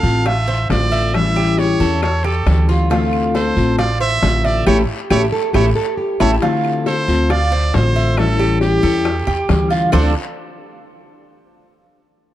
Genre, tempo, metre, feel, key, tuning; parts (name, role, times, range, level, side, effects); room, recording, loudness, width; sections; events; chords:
latin, Cuban son and guajira; 137 BPM; 4/4; straight; D minor from 6.4 s; A4 = 444 Hz
brilliant trumpet; melody; 0.0-10.1 s; D4 to F5; -22 LUFS; right 2 dB
picked steel-string acoustic guitar; accompaniment; 0.0-10.1 s; D3 to F4; -20 LUFS; left 4 dB
Cuban tres; arpeggios; 0.0-10.1 s; D4 to E5; -21 LUFS; right 3 dB
upright bass; bass; 0.0-10.1 s; A1 to E2; -18 LUFS; equal
guiro; percussion; 0.0-10.0 s; -35 LUFS; left 5 dB
bongos; percussion; 0.3-10.0 s; -24 LUFS; left 5 dB
claves; percussion; 0.3-10.0 s; -31 LUFS; left 8 dB
nylon-string guitar; second line; 5.1-6.4, 9.9-10.1 s; E4 to A4; -24 LUFS; right 4 dB
light reverb; dark, warm production; -14 LUFS; side -13 dB against mid
0.0-6.4 A section; 6.4-9.9 B section; 9.9-11.7 C section
band accent 4.7-6.4; drum fill 5.8-6.4
0.0 Dm7; 1.1 A7; 2.9 Dm7; 4.7 A7; 6.4 Dm7; 8.2 A7; 9.9 D7(no3)